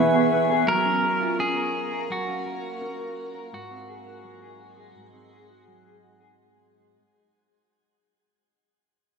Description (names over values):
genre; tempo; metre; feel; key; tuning
dream pop; 84 BPM; 4/4; straight; unclear; A4 = 440 Hz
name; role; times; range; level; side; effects
granular cloud pad; sustained chords; 0.0-6.4 s; B3 to C#6; -28 LUFS; right 1 dB; built-in reverb, shimmer reverb
mellow electric guitar; arpeggios; 0.0-7.0 s; Ab2 to B4; -25 LUFS; right 1 dB; lush chorus, shimmer reverb, ping-pong delay
pedal steel guitar; melody; 0.7-5.6 s; Gb4 to Bb4; -28 LUFS; equal; shimmer reverb, ping-pong delay
room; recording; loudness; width
wet recital hall reverb, RT60 1.6 s, digital ambience; none; -22 LUFS; side -5 dB against mid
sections
0.0-6.4 A section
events
fade-out 0.0-6.4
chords
0.0 E6; 0.7 Gbmaj7; 3.5 Ab7